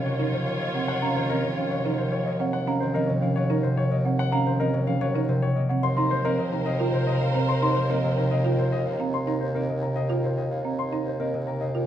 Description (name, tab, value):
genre	classical, minimalist pattern music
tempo	109 BPM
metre	3/4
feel	straight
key	Eb dorian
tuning	A4 = 440 Hz
part	warm grand piano	melody	0.0-11.9 s	Bb4 to C6	-31 LUFS	left 6 dB	none
part	concert harp	accompaniment	0.0-11.9 s	C3 to Eb4	-26 LUFS	equal	none
part	warm studio string section	sustained chords	0.0-2.4, 5.8-9.0 s	F4 to Db5	-33 LUFS	equal	none
part	folk marimba with medium mallets	arpeggios	0.0-11.9 s	C4 to F4	-31 LUFS	right 6 dB	none
part	clear bassoon	bass	0.0-11.9 s	Eb2	-30 LUFS	right 2 dB	none
part	celesta	arpeggios	0.8-11.4 s	Eb5 to C6	-31 LUFS	right 1 dB	none
room	moderate scoring stage reverb, RT60 1.4 s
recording	none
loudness	-22 LUFS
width	side -11 dB against mid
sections	0.0-11.9 A section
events	none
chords	0.0 Ebm9; 5.8 Bbsus2/Eb